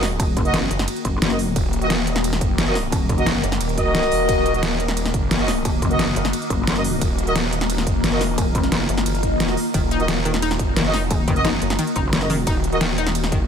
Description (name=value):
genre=dark technical drum and bass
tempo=176 BPM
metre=4/4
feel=straight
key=Eb minor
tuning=A4 = 440 Hz
part: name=swarming drone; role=sustained chords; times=0.1-13.5 s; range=Eb3 to Bb4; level=-26 LUFS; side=left 3 dB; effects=built-in reverb, sidechain pumping
part: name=mellow brass ensemble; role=stabs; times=0.0-12.8 s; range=Gb4 to Eb5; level=-25 LUFS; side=right 1 dB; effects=dub echo
part: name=snarling distorted saw bass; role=bass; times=0.0-13.5 s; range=Eb1 to Gb1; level=-24 LUFS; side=equal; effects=distortion, overdrive
part: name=dubstep drum kit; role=drums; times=0.0-13.4 s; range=hi-hat, ride cymbal, snare drum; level=-24 LUFS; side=equal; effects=studio reverb
part: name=pulsing pluck wobble bass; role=bass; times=0.2-3.4, 5.7-8.9, 11.1-12.5 s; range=Eb1 to Gb1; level=-24 LUFS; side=equal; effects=chorus
part: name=electronic kick drum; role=drums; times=0.2-13.4 s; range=none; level=-23 LUFS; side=equal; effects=studio reverb
part: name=swell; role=sound effects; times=9.2-9.7 s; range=none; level=-30 LUFS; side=left 2 dB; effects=none
part: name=analog pluck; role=arpeggios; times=9.7-13.4 s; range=Eb3 to Eb4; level=-26 LUFS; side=left 3 dB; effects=chorus, sidechain pumping, dub echo
room=light reverb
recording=none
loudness=-18 LUFS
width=side -7 dB against mid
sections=0.0-13.5 A section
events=swell 9.2-9.7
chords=0.0 Ebm